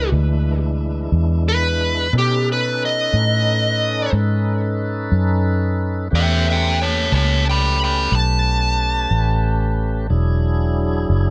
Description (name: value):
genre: slow blues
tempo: 60 BPM (dotted quarters)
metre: 12/8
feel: straight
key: unclear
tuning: A4 = 440 Hz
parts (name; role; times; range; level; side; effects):
- smooth overdriven lead guitar; melody; 0.0-10.1 s; G4 to B5; -22 LUFS; equal; none
- tonewheel organ; sustained chords; 0.0-11.3 s; E3 to B4; -28 LUFS; equal; slow rotary speaker, overdrive
- vintage muted fingered electric bass; bass; 0.0-11.3 s; E1 to B2; -21 LUFS; equal; none
room: light reverb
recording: none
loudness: -19 LUFS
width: mono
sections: 0.0-11.3 A section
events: none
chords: 0.0 E7; 2.1 B9; 6.1 A9; 10.1 E9